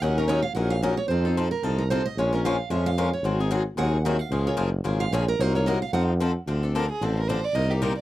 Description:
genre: acoustic string swing (jazz manouche)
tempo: 223 BPM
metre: 4/4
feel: swing 58% on 8ths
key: unclear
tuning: A4 = 441 Hz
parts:
  - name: picked steel-string acoustic guitar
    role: second line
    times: 0.0-6.0 s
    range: A4 to Gb5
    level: -29 LUFS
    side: right 5 dB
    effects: none
  - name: picked swing-style acoustic guitar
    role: accompaniment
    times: 0.0-7.9 s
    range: C3 to Bb4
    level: -27 LUFS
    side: left 3 dB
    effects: none
  - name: warm tuba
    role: bass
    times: 0.0-8.0 s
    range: Gb1 to F2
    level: -25 LUFS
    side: equal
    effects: none
  - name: warm violin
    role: melody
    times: 6.8-8.0 s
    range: G4 to Eb5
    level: -28 LUFS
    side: right 3 dB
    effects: none
room: little or no reverb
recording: dry, close 1970s-style studio recording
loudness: -22 LUFS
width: side -15 dB against mid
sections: 0.0-6.5 A section; 6.5-8.0 A section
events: steel-string acoustic guitar solo 0.0-6.5; violin solo 6.5-8.0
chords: 0.0 Ebm7; 1.1 F7; 2.2 Bbm7; 3.2 Ab7; 4.3 Db6; 5.4 Cm7b5; 5.9 F7; 6.5 Dm7

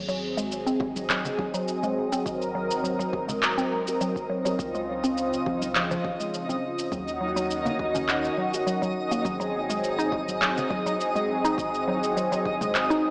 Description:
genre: organic downtempo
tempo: 103 BPM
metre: 4/4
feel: straight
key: Ab mixolydian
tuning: A4 = 440 Hz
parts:
  - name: warm analog pad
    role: sustained chords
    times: 0.0-13.1 s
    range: Db3 to Bb4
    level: -31 LUFS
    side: equal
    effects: chorus, sidechain pumping
  - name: mallet-like synth pluck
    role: arpeggios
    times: 0.0-13.0 s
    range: F3 to Eb4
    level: -33 LUFS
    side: equal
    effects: chorus, phaser, tape echo
  - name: warm sub bass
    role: bass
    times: 0.0-13.0 s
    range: Eb1 to Eb2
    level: -48 LUFS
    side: equal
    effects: none
  - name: twinkling granular texture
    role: texture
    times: 0.4-13.1 s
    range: Eb4 to Eb5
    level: -35 LUFS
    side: equal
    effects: built-in reverb
  - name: electronic shaker and handclaps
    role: drums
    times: 0.1-13.0 s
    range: none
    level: -32 LUFS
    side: equal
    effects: studio reverb
  - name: electronic kick drum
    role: drums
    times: 0.8-12.6 s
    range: none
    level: -39 LUFS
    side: equal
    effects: overdrive, studio reverb
  - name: bongos and congas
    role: percussion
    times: 0.8-12.7 s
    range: none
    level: -40 LUFS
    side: equal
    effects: none
room: wet lush hall reverb, RT60 1.7 s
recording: small speaker sound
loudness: -27 LUFS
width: mono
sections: 0.0-13.1 A section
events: none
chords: 0.0 Ab7; 4.6 Dbmaj7; 6.9 Ebm7; 9.3 Ab7

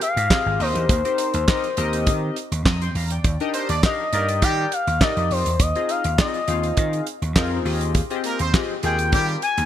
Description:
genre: early-eighties boogie funk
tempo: 102 BPM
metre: 4/4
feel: straight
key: Eb major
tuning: A4 = 440 Hz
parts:
  - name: expressive portamento lead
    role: melody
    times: 0.0-9.7 s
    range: C5 to Ab5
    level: -23 LUFS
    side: left 3 dB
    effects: chorus
  - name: damped 70s drum kit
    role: drums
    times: 0.0-9.7 s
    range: handclaps, hi-hat, kick drum, snare drum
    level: -22 LUFS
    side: right 1 dB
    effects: none
  - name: vintage slap bass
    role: bass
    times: 0.2-9.7 s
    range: Ab1 to Eb3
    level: -24 LUFS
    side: right 1 dB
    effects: none
  - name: chorused polysynth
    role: accompaniment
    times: 0.3-9.4 s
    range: C4 to Eb6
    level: -27 LUFS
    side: left 4 dB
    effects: none
  - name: clear horn section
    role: second line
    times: 3.5-4.7, 8.2-9.4 s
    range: G3 to D5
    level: -28 LUFS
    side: right 4 dB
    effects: none
room: light reverb, studio reverb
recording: bright 1980s-style digital production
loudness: -19 LUFS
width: side -11 dB against mid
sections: 0.0-9.7 A section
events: none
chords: 0.0 Fm9; 0.6 Cm7/Eb; 3.2 Ebmaj7; 5.6 Ab6/Eb; 7.7 Fm9/Eb

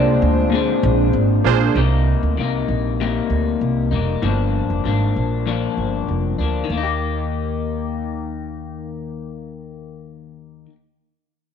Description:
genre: indie pop, bedroom pop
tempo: 97 BPM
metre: 4/4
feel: straight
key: Eb major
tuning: A4 = 439 Hz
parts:
  - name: warm velvety synth lead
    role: melody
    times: 0.0-0.5 s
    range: D5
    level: -24 LUFS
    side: right 4 dB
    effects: lush chorus, slapback echo
  - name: electric guitar through a small old amp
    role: accompaniment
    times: 0.0-10.8 s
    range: G2 to G4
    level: -22 LUFS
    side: left 10 dB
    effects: lush chorus, warbly pitch drift
  - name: warm analog keys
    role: accompaniment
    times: 0.0-1.8 s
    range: Bb3 to C5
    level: -22 LUFS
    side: right 12 dB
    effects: chorus
  - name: warbly tape-like pad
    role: sustained chords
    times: 0.0-1.7 s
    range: Ab3 to D4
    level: -26 LUFS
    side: right 2 dB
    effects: chorus, built-in reverb, phaser
  - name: upright bass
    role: bass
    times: 0.0-10.6 s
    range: F1 to Eb2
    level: -21 LUFS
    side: right 2 dB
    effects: none
room: light reverb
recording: 1960s-style stereo with parts hard left and right, nothing above 10.8 kHz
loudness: -17 LUFS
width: side -7 dB against mid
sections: 0.0-1.8 A section; 1.8-6.7 B section; 6.7-9.2 C section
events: none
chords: 0.0 Bb9; 1.8 Cm7; 4.2 Gm7; 6.7 Eb

